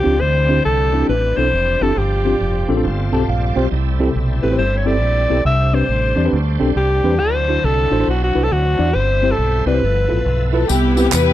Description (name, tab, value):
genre	uptempo gospel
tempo	138 BPM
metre	4/4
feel	swing 64% on 8ths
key	C major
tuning	A4 = 440 Hz
part	clear alto saxophone	melody	0.0-10.5 s	F#4 to E5	-19 LUFS	left 1 dB	none
part	tine electric piano	accompaniment	0.0-11.3 s	G2 to A5	-20 LUFS	equal	medium stereo tremolo
part	bright tonewheel organ	sustained chords	0.0-11.3 s	E3 to G5	-28 LUFS	right 5 dB	slow rotary speaker, chorus vibrato
part	warm French horn section	sustained chords	0.0-10.7 s	E3 to F4	-31 LUFS	right 2 dB	none
part	deep dub fingered electric bass	bass	0.1-11.3 s	F1 to E2	-18 LUFS	equal	none
part	warm studio string section	melody	10.5-11.3 s	B3 to B4	-16 LUFS	left 2 dB	none
part	tambourine and handclaps	percussion	10.7-11.3 s	none	-22 LUFS	right 2 dB	none
room	studio ambience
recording	dry, close 1970s-style studio recording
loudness	-14 LUFS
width	side -13 dB against mid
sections	0.0-10.7 A section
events	tine electric piano fill 2.8-3.7; tonewheel organ fill 2.8-3.7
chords	0.2 D9sus4; 2.0 G7sus4; 2.8 G9sus4; 3.7 C6; 5.5 Am11; 7.2 D9; 8.9 C/G; 9.8 G13; 10.7 Cmaj7